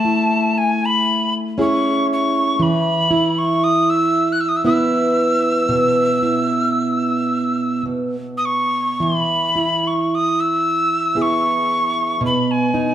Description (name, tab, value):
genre	celtic folk, Celtic slow air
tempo	52-59 BPM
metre	3/4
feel	rubato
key	E major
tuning	A4 = 440 Hz
part	breathy mid whistle	melody	0.0-12.9 s	G#5 to F#6	-18 LUFS	equal	none
part	fingerpicked plugged-in steel-string acoustic guitar	accompaniment	0.0-12.9 s	B2 to B4	-18 LUFS	right 1 dB	none
room	moderate concert hall reverb, RT60 2.2 s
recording	none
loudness	-16 LUFS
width	side -11 dB against mid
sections	0.0-9.0 A section; 9.0-12.9 A section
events	none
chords	0.0 Amaj7; 2.6 E5; 5.7 Bsus4; 7.9 N.C.; 9.0 E; 12.2 B